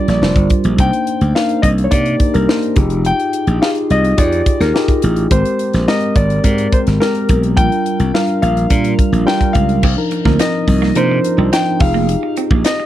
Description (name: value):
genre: polished 1980s jazz-funk pop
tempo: 106 BPM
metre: 4/4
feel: straight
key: F dorian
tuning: A4 = 436 Hz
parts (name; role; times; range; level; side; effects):
- warm grand piano; melody; 0.0-12.9 s; Bb4 to G5; -20 LUFS; left 2 dB; none
- tine electric piano; accompaniment; 0.0-12.9 s; F3 to C5; -17 LUFS; equal; lush chorus
- slap bass; bass; 0.1-12.6 s; F1 to C3; -15 LUFS; equal; none
- tight funk drum kit; drums; 0.1-12.8 s; crash cymbal, hi-hat, kick drum, snare drum; -16 LUFS; equal; none
- clean electric guitar; riff; 9.8-12.8 s; Bb3 to Eb4; -23 LUFS; right 14 dB; wide subtle chorus
room: little or no reverb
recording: dry, close 1970s-style studio recording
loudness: -12 LUFS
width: side -13 dB against mid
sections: 0.0-9.8 A section; 9.8-12.9 B section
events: none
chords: 0.0 Gm7; 0.8 Cm9; 2.8 Fm9; 5.3 Abmaj9; 7.6 Gm7/Bb; 9.8 Cm11; 11.8 Fm9